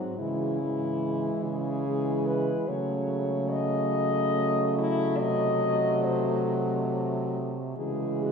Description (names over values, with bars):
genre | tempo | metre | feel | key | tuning
classical, lyrical piece for horn quartet | 48 BPM (dotted quarters) | 6/8 | rubato | C# minor | A4 = 440 Hz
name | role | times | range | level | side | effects
mellow French horn | melody | 0.0-8.3 s | E4 to D#5 | -30 LUFS | left 3 dB | none
mellow French horn | second line | 0.0-8.3 s | G#3 to B#3 | -32 LUFS | right 5 dB | none
warm French horn | accompaniment | 0.0-8.3 s | E3 to F#3 | -32 LUFS | left 4 dB | none
mellow French horn | bass | 0.0-8.3 s | C3 to C#3 | -31 LUFS | right 2 dB | none
room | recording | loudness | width
wet cathedral reverb, RT60 4.6 s | minimal, uncompressed stereo recording | -25 LUFS | side -6 dB against mid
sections
0.0-8.3 A section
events
none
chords
0.2 C#m; 2.7 D#m7b5/C#; 5.2 Cdim7; 7.8 C#m